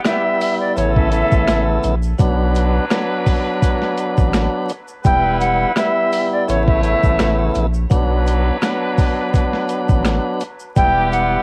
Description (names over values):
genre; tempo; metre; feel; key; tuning
hip hop, boom-bap hip-hop; 84 BPM; 4/4; swing 54% on 16ths; B minor; A4 = 440 Hz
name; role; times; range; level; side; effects
tonewheel organ; accompaniment; 0.0-11.4 s; C#3 to E4; -22 LUFS; equal; overdrive, cassette tape, high-pass filter, low-pass filter
bright trumpet section; stabs; 0.0-11.4 s; F#3 to C#5; -30 LUFS; equal; high-pass filter, low-pass filter, cassette tape, tape echo
dusty soul sampler-style drum kit; drums; 0.0-11.3 s; hi-hat, kick drum, rim click, snare drum; -20 LUFS; equal; cassette tape
silver concert flute; melody; 0.1-11.4 s; C#5 to G5; -20 LUFS; equal; high-pass filter, low-pass filter
egg shaker; percussion; 0.1-11.3 s; none; -46 LUFS; equal; none
saturated sub bass; bass; 0.8-11.4 s; E1 to B1; -22 LUFS; equal; none
room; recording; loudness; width
small room ambience; home recording on cassette, vinyl crackle; -17 LUFS; mono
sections
0.0-11.4 A section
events
none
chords
0.0 Em; 0.8 Aadd9; 2.2 Bm; 5.1 Em; 6.5 Aadd9; 7.9 Bm; 10.8 Em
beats
0.05 0.77 1.48 | 2.19 2.91 3.62 4.34 | 5.05 5.76 6.48 7.19 | 7.91 8.62 9.34 10.05 | 10.77